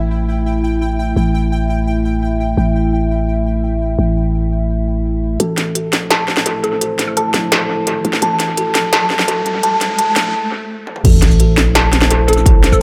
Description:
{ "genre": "half-time drum and bass", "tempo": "170 BPM", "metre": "4/4", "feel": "half-time", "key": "A phrygian", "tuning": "A4 = 442 Hz", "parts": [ { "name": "dark analog pad", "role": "sustained chords", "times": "0.0-12.8 s", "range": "A3 to E5", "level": "-25 LUFS", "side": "equal", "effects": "chorus, sidechain pumping" }, { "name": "growling 808-style bass", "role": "bass", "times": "0.0-12.8 s", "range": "A1 to Bb1", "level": "-19 LUFS", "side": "equal", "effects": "high-pass filter" }, { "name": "pulsing gated texture", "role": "texture", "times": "0.0-5.4 s", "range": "E4 to G5", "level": "-30 LUFS", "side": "equal", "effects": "chorus, built-in reverb" }, { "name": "kalimba", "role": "arpeggios", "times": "5.4-12.6 s", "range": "A4 to A5", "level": "-21 LUFS", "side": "equal", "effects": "low-pass filter, analog delay" }, { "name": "industrial drum kit", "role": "drums", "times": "5.4-12.8 s", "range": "crash cymbal, hi-hat, shaker, snare drum, toms", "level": "-19 LUFS", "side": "equal", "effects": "high-pass filter on cymbals, low-pass filter on cymbals, high-pass filter on hats, low-pass filter on hats, high-pass filter on snare, low-pass filter on snare, high-pass filter on toms, low-pass filter on toms, high-pass filter on perc, low-pass filter on perc, high-pass filter on room, low-pass filter on room, analog delay" }, { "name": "riser and sub drop", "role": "sound effects", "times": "8.0-12.5 s", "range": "none", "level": "-25 LUFS", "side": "equal", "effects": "none" }, { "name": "hollow square pluck", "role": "melody", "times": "6.6-7.2, 12.3-12.8 s", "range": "A4", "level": "-23 LUFS", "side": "equal", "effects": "chorus, analog delay" }, { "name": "electronic kick drum", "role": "drums", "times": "11.0-12.8 s", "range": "none", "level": "-13 LUFS", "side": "equal", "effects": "none" } ], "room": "moderate plate reverb, RT60 1.9 s", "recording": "echo-heavy mix", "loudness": "-15 LUFS", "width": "mono", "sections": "0.0-5.4 A section; 5.4-11.0 B section; 11.0-12.8 C section", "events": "filter sweep on analog synth pad 0.0-5.4; build-up 5.4-11.0; riser 8.0-10.3; break 10.3-11.0; drum fill 10.9; drop 11.0-12.8; impact 11.0-12.5", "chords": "0.0 A5; 5.4 Am" }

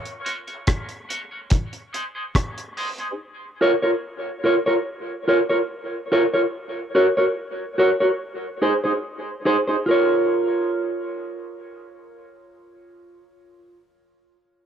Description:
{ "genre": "dub reggae", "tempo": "72 BPM", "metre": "4/4", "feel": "straight", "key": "Bb minor", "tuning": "A4 = 440 Hz", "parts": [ { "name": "deep reggae drum kit", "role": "drums", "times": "0.1-3.2 s", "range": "hi-hat, kick drum, rim click", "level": "-22 LUFS", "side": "equal", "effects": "cassette tape" }, { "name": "mellow electric guitar", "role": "accompaniment", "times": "0.2-13.6 s", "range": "Eb4 to Db5", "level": "-20 LUFS", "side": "right 1 dB", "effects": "high-pass filter, cassette tape, dub echo" } ], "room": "light reverb, small room ambience", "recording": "home recording on cassette", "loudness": "-20 LUFS", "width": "side -8 dB against mid", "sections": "0.0-9.9 A section; 9.9-13.2 B section", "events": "filter sweep on clean electric guitar 0.0-3.2", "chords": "0.0 Gb; 1.5 Ab; 3.2 Bbm; 6.5 Gb; 8.2 Ab; 9.9 Bbm" }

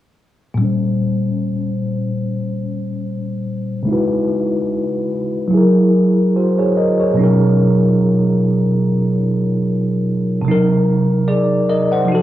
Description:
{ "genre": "hip hop", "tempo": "73 BPM", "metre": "4/4", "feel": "swing 56% on 16ths", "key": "unclear", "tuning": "A4 = 440 Hz", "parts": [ { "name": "bell-like tine electric piano", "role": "accompaniment", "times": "0.5-12.2 s", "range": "Bb2 to Gb5", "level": "-14 LUFS", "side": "equal", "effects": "medium stereo tremolo, cassette tape, low-pass filter" } ], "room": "moderate spring reverb, RT60 1.9 s", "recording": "home recording on cassette, small room ambience", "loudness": "-14 LUFS", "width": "side -13 dB against mid", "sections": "0.6-12.2 A section", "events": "filter sweep on tine electric piano 0.6-12.2", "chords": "0.6 Bbm69; 3.9 Dbm11; 5.5 Gb9; 7.2 Bmaj9#11; 10.5 Cm7b5" }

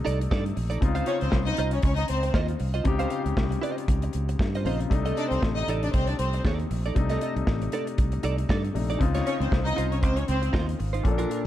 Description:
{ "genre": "disco", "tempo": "117 BPM", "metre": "4/4", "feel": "swing 56% on 16ths", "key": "unclear", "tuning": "A4 = 440 Hz", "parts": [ { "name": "clear grand piano", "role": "accompaniment", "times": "0.0-11.5 s", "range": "Bb2 to A4", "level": "-31 LUFS", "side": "left 6 dB", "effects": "none" }, { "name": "direct-recorded clean electric guitar", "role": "accompaniment", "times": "0.0-11.5 s", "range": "D4 to F5", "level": "-33 LUFS", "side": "right 6 dB", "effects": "analog chorus" }, { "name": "fingered electric bass", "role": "bass", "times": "0.1-11.2 s", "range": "Ab1 to G2", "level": "-27 LUFS", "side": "equal", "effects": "none" }, { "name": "modern studio drum kit", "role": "drums", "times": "0.1-11.4 s", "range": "hi-hat, kick drum, snare drum", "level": "-28 LUFS", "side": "equal", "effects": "none" }, { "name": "rich studio string section", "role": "second line", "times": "1.1-10.5 s", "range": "C4 to Eb5", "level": "-29 LUFS", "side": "equal", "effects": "none" } ], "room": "small room ambience", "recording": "dark, warm production", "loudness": "-23 LUFS", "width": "side -12 dB against mid", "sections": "0.0-11.5 A section", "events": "none", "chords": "0.0 Cm69; 0.8 Dbmaj9; 4.9 Cm69; 9.0 Dbmaj9" }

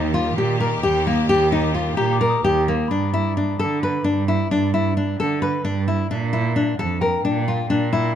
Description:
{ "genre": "contemporary instrumental, contemporary", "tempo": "262 BPM (eighths)", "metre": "7/8", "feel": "straight", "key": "unclear", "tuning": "A4 = 440 Hz", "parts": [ { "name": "rich symphonic string section", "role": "sustained chords", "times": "0.0-2.9 s", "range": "Eb3 to G4", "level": "-28 LUFS", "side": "left 2 dB", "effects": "none" }, { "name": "nylon-string guitar", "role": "arpeggios", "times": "0.0-8.1 s", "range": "Bb3 to B4", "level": "-20 LUFS", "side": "left 3 dB", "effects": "none" }, { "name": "rich cello", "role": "bass", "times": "0.0-8.2 s", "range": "Eb2 to D3", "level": "-22 LUFS", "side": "right 5 dB", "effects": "none" }, { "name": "glockenspiel with soft plastic mallets", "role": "texture", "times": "2.0-3.4, 7.0-7.5 s", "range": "G5 to Eb6", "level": "-30 LUFS", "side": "left 9 dB", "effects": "none" } ], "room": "light reverb", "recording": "close, detailed microphones", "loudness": "-18 LUFS", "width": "side -9 dB against mid", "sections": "0.0-2.9 A section; 2.9-8.2 B section", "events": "none", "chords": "0.0 Eb; 2.9 G; 6.1 Bb" }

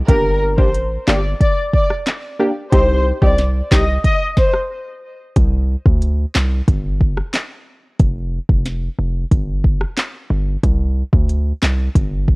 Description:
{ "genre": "dancehall", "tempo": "91 BPM", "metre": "4/4", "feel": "straight", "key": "unclear", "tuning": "A4 = 440 Hz", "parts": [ { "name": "hard-hitting 808-style bass", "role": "bass", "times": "0.0-12.4 s", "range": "F1 to D2", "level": "-18 LUFS", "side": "equal", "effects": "none" }, { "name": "warm studio violin section", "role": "melody", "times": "0.1-4.5 s", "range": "Bb4 to Eb5", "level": "-19 LUFS", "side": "left 1 dB", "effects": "tape echo" }, { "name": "punchy chord stab", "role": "accompaniment", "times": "0.1-3.8 s", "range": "Bb3 to G4", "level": "-20 LUFS", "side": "equal", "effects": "chorus, sidechain pumping" }, { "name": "afro-pop drum kit", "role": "drums", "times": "0.1-12.4 s", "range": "handclaps, hi-hat, kick drum, rim click, snare drum", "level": "-16 LUFS", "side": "equal", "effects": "none" } ], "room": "little or no reverb", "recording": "worn, warbling old tape, cassette tape, warbly pitch drift", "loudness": "-15 LUFS", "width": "side -26 dB against mid", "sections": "0.0-5.4 A section; 5.4-12.4 B section", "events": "break 4.7-5.4", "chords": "0.1 Gm; 2.7 Cm; 5.4 Csus2; 6.7 N.C.; 10.6 Csus2" }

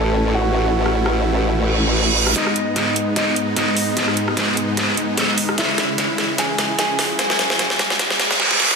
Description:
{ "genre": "heavy wobble dubstep", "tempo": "149 BPM", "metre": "4/4", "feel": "swing 55% on 16ths, half-time", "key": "G# phrygian", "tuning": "A4 = 440 Hz", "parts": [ { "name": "warm concert grand piano", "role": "melody", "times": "0.0-8.7 s", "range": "D#4 to G#5", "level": "-24 LUFS", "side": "equal", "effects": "tape echo" }, { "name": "supersaw chords", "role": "sustained chords", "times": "0.0-8.4 s", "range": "C#2 to E4", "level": "-23 LUFS", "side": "equal", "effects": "none" }, { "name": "formant-sweep wobble bass", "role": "bass", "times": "0.0-2.3 s", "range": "A1", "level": "-19 LUFS", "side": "equal", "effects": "chorus, overdrive" }, { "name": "dubstep drum kit", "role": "drums", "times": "0.9-8.8 s", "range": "hi-hat, rim click, snare drum", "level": "-19 LUFS", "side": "equal", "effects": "high-pass filter on snare, high-pass filter on hats, high-pass filter on room" }, { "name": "reverse cymbal and riser", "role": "sound effects", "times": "1.7-8.8 s", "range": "none", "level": "-23 LUFS", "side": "right 4 dB", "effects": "none" } ], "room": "moderate lush hall reverb, RT60 1.5 s", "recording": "dense, heavily limited modern master, high-pass filter", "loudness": "-16 LUFS", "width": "side -5 dB against mid", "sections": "0.0-2.4 A section; 2.4-8.8 B section", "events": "reverse cymbal 1.7-2.4, 8.0-8.8; build-up 2.4-8.8; drum fill 2.4-8.4, 8.4-8.8; riser 2.4-8.4; filter sweep 2.4-8.8", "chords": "0.0 A; 2.4 G#m; 5.6 C#m" }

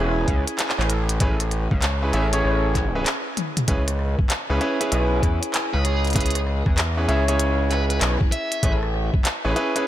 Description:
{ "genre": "glitch hop", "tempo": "97 BPM", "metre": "4/4", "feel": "swing 64% on 16ths", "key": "C# minor", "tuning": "A4 = 438 Hz", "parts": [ { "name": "bright concert grand piano", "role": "stabs", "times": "0.0-9.9 s", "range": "C#4 to E5", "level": "-25 LUFS", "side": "equal", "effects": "vintage 12-bit sampler grit, sidechain pumping, ping-pong delay" }, { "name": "gritty driven synth bass", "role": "bass", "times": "0.0-9.5 s", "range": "E1 to E2", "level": "-22 LUFS", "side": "equal", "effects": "overdrive" }, { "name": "electronic kick drum", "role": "drums", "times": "0.3-9.2 s", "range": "none", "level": "-21 LUFS", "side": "equal", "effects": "overdrive" }, { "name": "glitchy drum kit", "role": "drums", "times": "0.3-9.8 s", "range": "handclaps, hi-hat, rim click, toms", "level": "-27 LUFS", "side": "equal", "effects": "none" }, { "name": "dark smooth lead guitar", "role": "melody", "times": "5.7-8.7 s", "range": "G#4 to E5", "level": "-30 LUFS", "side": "right 1 dB", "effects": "overdrive, ping-pong delay" } ], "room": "light reverb", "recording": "none", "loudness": "-19 LUFS", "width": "side -12 dB against mid", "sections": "0.0-9.9 A section", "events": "break 3.1-3.7; drum fill 3.4-3.7", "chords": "0.0 Amaj7; 3.7 C#m7; 8.6 Amaj7" }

